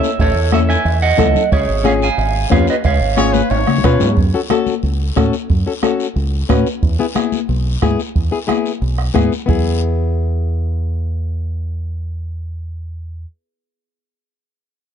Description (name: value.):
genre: latin, cumbia.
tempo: 181 BPM.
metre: 4/4.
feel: straight.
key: E major.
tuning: A4 = 441 Hz.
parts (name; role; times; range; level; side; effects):
electric guitar at the edge of break-up; melody; 0.0-3.8 s; G#4 to G#5; -18 LUFS; right 6 dB; spring reverb, slapback echo.
flamenco guitar; accompaniment; 0.0-13.3 s; B3 to B4; -20 LUFS; left 5 dB; none.
guiro; percussion; 0.0-9.6 s; none; -32 LUFS; left 7 dB; none.
deep dub fingered electric bass; bass; 0.2-13.2 s; G#1 to C#3; -18 LUFS; right 1 dB; none.
bombo; percussion; 0.2-9.6 s; none; -18 LUFS; right 3 dB; none.
cowbell and timbales; percussion; 0.2-4.1 s; none; -27 LUFS; right 4 dB; none.
congas; percussion; 0.5-9.6 s; none; -22 LUFS; left 11 dB; none.
bright trumpet; second line; 3.2-4.2 s; B4 to C#5; -23 LUFS; left 5 dB; slapback echo.
room: little or no reverb.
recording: dark, warm production, nothing above 10.7 kHz.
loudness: -14 LUFS.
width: side -8 dB against mid.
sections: 0.0-4.2 A section; 4.2-9.5 B section; 9.5-12.1 C section.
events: drum fill 3.5-4.2.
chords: 0.0 A; 1.5 C#; 4.2 F#m; 6.8 E.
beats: | 0.20 0.53 0.86 1.19 | 1.52 1.85 2.18 2.52 | 2.85 3.18 3.51 3.84 | 4.17 4.50 4.83 5.17 | 5.50 5.83 6.16 6.50 | 6.83 7.16 7.49 7.82 | 8.16 8.49 8.82 9.15 | 9.48 9.82 10.15 10.48 | 10.81 11.15 11.48 11.81.